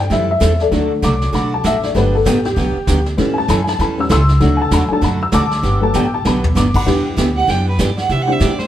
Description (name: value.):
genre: country, western swing.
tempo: 195 BPM.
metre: 4/4.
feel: swing 61% on 8ths.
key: G major.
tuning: A4 = 441 Hz.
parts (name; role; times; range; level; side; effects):
honky-tonk upright piano; accompaniment; 0.0-8.7 s; F#3 to E6; -18 LUFS; left 3 dB; none.
upright bass; bass; 0.0-8.7 s; G1 to C3; -18 LUFS; equal; none.
picked steel-string acoustic guitar; accompaniment; 0.1-8.5 s; C3 to A4; -20 LUFS; right 3 dB; none.
vintage brush drum kit; drums; 0.1-8.7 s; brushed snare drum, crash cymbal, hi-hat, kick drum, snare drum, toms; -22 LUFS; equal; none.
clear fiddle; second line; 7.4-8.7 s; B4 to G5; -18 LUFS; right 5 dB; none.
room: moderate stone room reverb, RT60 1.1 s.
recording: band playing live in one room.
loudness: -13 LUFS.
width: side -12 dB against mid.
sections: 0.0-6.9 A section; 6.9-8.7 A section.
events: honky-tonk piano solo 0.0-6.9; drum fill 5.9-6.6; fiddle solo 6.9-8.7.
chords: 0.0 Am7; 0.7 D; 1.9 Gmaj7; 3.2 A7; 4.4 D; 5.6 Gmaj7; 6.9 Em7; 8.1 Cadd9.